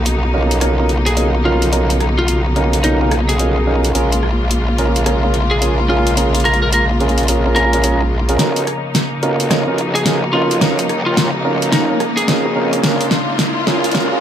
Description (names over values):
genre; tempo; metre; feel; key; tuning
glitch hop; 108 BPM; 4/4; swing 62% on 16ths; unclear; A4 = 441 Hz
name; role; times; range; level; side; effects
clear symphonic string section; sustained chords; 0.0-14.2 s; C#3 to F4; -21 LUFS; left 1 dB; low-pass filter
growl bass; bass; 0.0-14.2 s; Bb1 to D#2; -17 LUFS; equal; chorus, high-pass filter
pop drum kit; drums; 0.1-14.1 s; hi-hat, rim click, snare drum; -19 LUFS; equal; none
dark baby grand piano; stabs; 0.3-14.2 s; C#4 to Db5; -20 LUFS; right 2 dB; low-pass filter, ping-pong delay
lightly driven lead guitar; melody; 1.1-12.9 s; D#4 to Bb4; -20 LUFS; left 1 dB; ping-pong delay
riser; sound effects; 10.8-14.2 s; none; -24 LUFS; right 1 dB; none
room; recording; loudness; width
light reverb; high-pass filter; -13 LUFS; side -10 dB against mid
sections
0.0-8.4 A section; 8.4-14.2 B section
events
filter sweep on grand piano 0.0-8.4; build-up 8.4-14.2; drum fill 8.4-14.2; riser 10.8-14.2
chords
0.0 Bmaj9#11; 3.9 Bbm7; 8.4 Bmaj9#11; 12.8 Bbm7